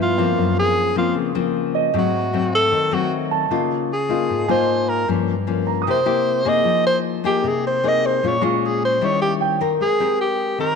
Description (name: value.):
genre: bossa nova.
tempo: 153 BPM.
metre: 4/4.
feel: straight.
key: F minor.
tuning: A4 = 440 Hz.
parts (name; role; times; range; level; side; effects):
breathy alto saxophone; melody; 0.0-10.8 s; F4 to Eb5; -20 LUFS; right 2 dB; none.
clear concert grand piano; accompaniment; 0.0-10.0 s; B3 to Eb6; -26 LUFS; right 14 dB; none.
nylon-string guitar; accompaniment; 0.0-10.8 s; Gb2 to Bb4; -21 LUFS; left 7 dB; none.
room: moderate echo chamber reverb, RT60 2.3 s.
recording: 1960s-style stereo with parts hard left and right.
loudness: -17 LUFS.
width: side -5 dB against mid.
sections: 0.0-9.8 A section.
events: alto saxophone solo 0.0-9.8.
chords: 0.4 Gbmaj9#11; 1.9 Ab7b9; 3.5 Db69; 5.1 Gm7b5; 5.9 C7; 6.7 Fm7; 8.2 Bbm7; 9.0 Eb7b9; 9.8 Abmaj9.